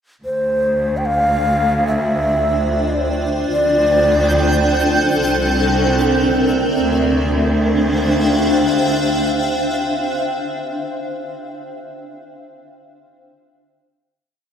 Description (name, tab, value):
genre	ambient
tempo	73 BPM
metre	4/4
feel	straight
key	D minor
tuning	A4 = 440 Hz
part	breathy mellow long shakuhachi	melody	0.2-4.7 s	C5 to G5	-18 LUFS	equal	tape echo
part	granular cloud pad	sustained chords	1.7-10.9 s	C4 to G5	-18 LUFS	equal	built-in reverb
part	rich symphonic cello section	bass	0.2-9.2 s	C2 to D2	-20 LUFS	equal	none
part	twinkling granular texture	texture	3.9-6.8 s	G5	-23 LUFS	right 2 dB	built-in reverb
room	wet lush hall reverb, RT60 2.6 s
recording	none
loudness	-14 LUFS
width	side -8 dB against mid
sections	0.2-6.8 A section; 6.8-10.1 final chord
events	fade-in on ambient pad 0.2-6.8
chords	0.2 Dm11; 3.5 F69/D; 5.2 C9; 6.8 Dm11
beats	| 0.25 1.07 1.89 2.72 | 3.54 4.36 5.18 6.00 | 6.83 7.65 8.47 9.29